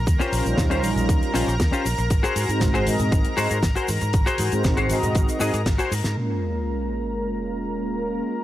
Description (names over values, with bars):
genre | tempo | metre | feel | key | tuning
nu-disco, nu disco | 118 BPM | 4/4 | straight | Bb minor | A4 = 443 Hz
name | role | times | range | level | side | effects
lush unison pad | sustained chords | 0.0-8.4 s | Bb4 to Bb5 | -30 LUFS | equal | chorus, sidechain pumping
fingered electric bass with an envelope filter | bass | 0.0-6.1 s | Ab1 to Ab2 | -25 LUFS | equal | sidechain pumping
damped 70s drum kit | drums | 0.1-6.2 s | hi-hat, rim click, shaker, snare drum | -29 LUFS | left 1 dB | low-pass filter on hats, low-pass filter on snare, low-pass filter on perc, low-pass filter on room
electronic kick drum | drums | 0.1-5.8 s | none | -22 LUFS | equal | none
clean electric guitar | riff | 0.2-6.1 s | Db4 to Eb5 | -26 LUFS | left 3 dB | ensemble chorus, analog delay
mellow synth brass | accompaniment | 0.4-8.4 s | G3 to Eb5 | -27 LUFS | right 1 dB | chorus, sidechain pumping, analog delay
congas | percussion | 0.6-5.1 s | none | -33 LUFS | right 2 dB | none
sub drop | sound effects | 6.2-8.2 s | none | -30 LUFS | equal | none
room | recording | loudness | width
small room ambience | dry, gritty hardware recording | -20 LUFS | side -13 dB against mid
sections
0.0-6.2 A section; 6.2-8.4 B section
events
drum fill 5.7-6.2; band accent 5.7; impact 6.2-8.2; filter sweep on analog synth pad 6.2-8.4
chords
0.0 Eb13; 2.1 Ab7; 6.2 Bbm7